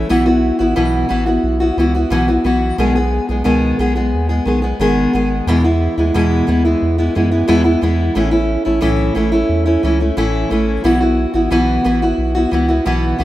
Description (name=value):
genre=acoustic pop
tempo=89 BPM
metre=4/4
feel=straight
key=unclear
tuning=A4 = 440 Hz
part: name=fingerpicked steel-string acoustic guitar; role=accompaniment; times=0.0-13.2 s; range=E2 to G#4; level=-14 LUFS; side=equal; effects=none
part: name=round analog bass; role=bass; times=0.0-13.2 s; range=G#1 to F#2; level=-18 LUFS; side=equal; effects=none
room=light reverb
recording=none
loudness=-13 LUFS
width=side -15 dB against mid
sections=0.0-13.2 A section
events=none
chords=0.1 Bsus4; 2.8 G#m/B; 5.5 E; 8.2 A; 10.8 Bsus4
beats=| 0.10 0.77 1.44 2.12 | 2.79 3.46 4.13 4.80 | 5.47 6.14 6.82 7.49 | 8.16 8.83 9.50 10.18 | 10.85 11.52 12.19 12.87